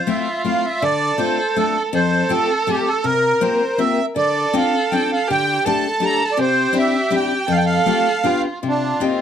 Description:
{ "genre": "musette waltz", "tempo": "161 BPM", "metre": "3/4", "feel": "straight", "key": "F major", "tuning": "A4 = 440 Hz", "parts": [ { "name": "accordion", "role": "melody", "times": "0.0-9.2 s", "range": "C4 to Bb5", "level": "-20 LUFS", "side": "right 3 dB", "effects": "light tremolo tuning" }, { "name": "dark violin", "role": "second line", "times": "0.0-9.2 s", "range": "F4 to Bb4", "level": "-22 LUFS", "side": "right 2 dB", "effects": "none" }, { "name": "picked steel-string acoustic guitar", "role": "accompaniment", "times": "0.1-9.2 s", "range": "F2 to A4", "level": "-21 LUFS", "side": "left 5 dB", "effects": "none" } ], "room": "moderate small room ambience, RT60 0.5 s", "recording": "none", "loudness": "-16 LUFS", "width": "side -8 dB against mid", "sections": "0.0-8.6 A section", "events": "none", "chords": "0.0 Fmaj7; 0.8 Dm7; 1.9 Fadd9; 3.0 C7sus4; 4.2 Dm7; 5.3 Gsus2/D; 6.4 Cadd9; 7.5 Fadd9; 8.3 G7; 8.6 Cm7" }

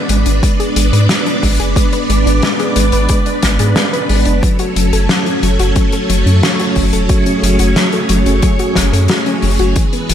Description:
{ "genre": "synthwave", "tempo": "90 BPM", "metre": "4/4", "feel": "straight", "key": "F# minor", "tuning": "A4 = 440 Hz", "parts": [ { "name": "string machine, full ensemble", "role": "sustained chords", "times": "0.0-10.1 s", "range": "E3 to D5", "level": "-16 LUFS", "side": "right 1 dB", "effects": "ensemble chorus" }, { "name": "soft round pluck", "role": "arpeggios", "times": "0.0-10.1 s", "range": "E3 to B4", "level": "-20 LUFS", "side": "left 3 dB", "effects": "chorus, ping-pong delay" }, { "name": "round analog bass", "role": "bass", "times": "0.1-10.1 s", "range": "E1 to G#2", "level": "-14 LUFS", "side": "equal", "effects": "sidechain pumping" }, { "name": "loose indie drum kit", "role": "drums", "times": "0.1-10.1 s", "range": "hi-hat, snare drum", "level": "-18 LUFS", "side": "left 1 dB", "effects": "gated reverb" }, { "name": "electronic kick drum", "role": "drums", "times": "0.4-9.9 s", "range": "none", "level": "-15 LUFS", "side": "equal", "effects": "none" } ], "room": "light reverb, studio reverb", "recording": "none", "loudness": "-11 LUFS", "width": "side -9 dB against mid", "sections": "0.0-10.1 A section", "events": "none", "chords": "0.0 G#dim; 4.4 F#m" }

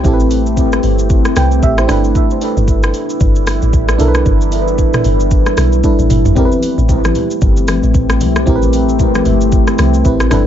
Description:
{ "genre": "amapiano", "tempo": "114 BPM", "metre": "4/4", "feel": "swing 58% on 16ths", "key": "A minor", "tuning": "A4 = 440 Hz", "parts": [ { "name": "mellow FM electric piano", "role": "accompaniment", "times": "0.0-10.5 s", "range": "C4 to G5", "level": "-16 LUFS", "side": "right 2 dB", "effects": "chorus, analog delay" }, { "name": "deep dark ambient pad", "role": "sustained chords", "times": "0.0-10.5 s", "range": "G3 to B4", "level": "-18 LUFS", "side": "left 1 dB", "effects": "chorus, built-in reverb" }, { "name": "deep log drum bass", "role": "bass", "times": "0.0-10.5 s", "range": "G1 to C2", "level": "-14 LUFS", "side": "equal", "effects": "none" }, { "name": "afro-pop drum kit", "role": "drums", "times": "0.0-10.5 s", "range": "hi-hat, kick drum, rim click, shaker, toms", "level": "-15 LUFS", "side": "equal", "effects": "none" }, { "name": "congas", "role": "percussion", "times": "6.4-10.5 s", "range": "none", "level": "-23 LUFS", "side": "left 3 dB", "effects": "analog delay" } ], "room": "little or no reverb", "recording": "echo-heavy mix, nothing above 7.6 kHz", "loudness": "-10 LUFS", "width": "side -10 dB against mid", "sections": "0.0-10.5 A section", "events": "drum fill 5.8-6.4", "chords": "0.0 Am9; 1.9 G6; 6.4 Am9" }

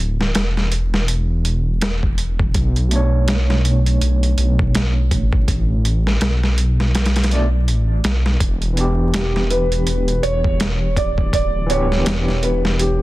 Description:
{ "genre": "trip hop", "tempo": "82 BPM", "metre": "4/4", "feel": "swing 58% on 16ths", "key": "E dorian", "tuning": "A4 = 440 Hz", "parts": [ { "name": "dark detuned saw bass", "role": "bass", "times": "0.0-13.0 s", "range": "D1 to B1", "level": "-18 LUFS", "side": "equal", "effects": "none" }, { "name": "dusty soul sampler-style drum kit", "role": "drums", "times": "0.2-13.0 s", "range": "hi-hat, kick drum, snare drum", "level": "-21 LUFS", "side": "equal", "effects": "overdrive" }, { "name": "overdriven tine electric piano", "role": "accompaniment", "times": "2.9-13.0 s", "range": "B2 to D5", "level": "-23 LUFS", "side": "right 1 dB", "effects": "fast tremolo, vintage 12-bit sampler grit, tape echo" }, { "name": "felt-muted upright piano", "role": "melody", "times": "9.1-13.0 s", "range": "G4 to D5", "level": "-22 LUFS", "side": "right 1 dB", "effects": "none" } ], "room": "digital ambience", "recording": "dense, heavily limited modern master, vinyl crackle", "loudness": "-15 LUFS", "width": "side -18 dB against mid", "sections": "0.0-13.0 A section", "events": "none", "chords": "0.0 Dsus2; 2.5 Bm9; 8.4 Em7" }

